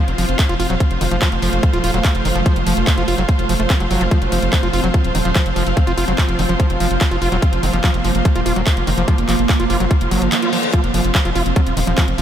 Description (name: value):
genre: psychedelic trance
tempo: 145 BPM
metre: 4/4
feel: straight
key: F major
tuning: A4 = 440 Hz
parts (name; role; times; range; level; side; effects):
- pulsing gated texture; sustained chords; 0.0-12.2 s; F3 to C4; -23 LUFS; right 2 dB; chorus, built-in reverb, sidechain pumping
- overdriven acid bass; riff; 0.0-12.2 s; Eb3 to F4; -22 LUFS; equal; distortion, auto-pan, sidechain pumping, diffuse ambient delay
- clear studio string section; texture; 0.0-12.2 s; F4 to F5; -24 LUFS; right 1 dB; sidechain pumping
- round analog bass; bass; 0.1-12.2 s; Eb1 to Gb1; -20 LUFS; equal; tube saturation
- drum and bass drum kit; drums; 0.1-12.2 s; handclaps, hi-hat; -24 LUFS; equal; overdrive
- electronic kick drum; drums; 0.4-12.1 s; none; -15 LUFS; equal; overdrive
- reverse cymbal; sound effects; 10.1-10.7 s; none; -27 LUFS; left 4 dB; none
room: moderate huge ambient reverb, RT60 7.4 s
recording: dreamy mix soaked in reverb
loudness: -14 LUFS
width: side -10 dB against mid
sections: 0.0-12.2 A section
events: reverse cymbal 10.1-10.7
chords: 0.0 F5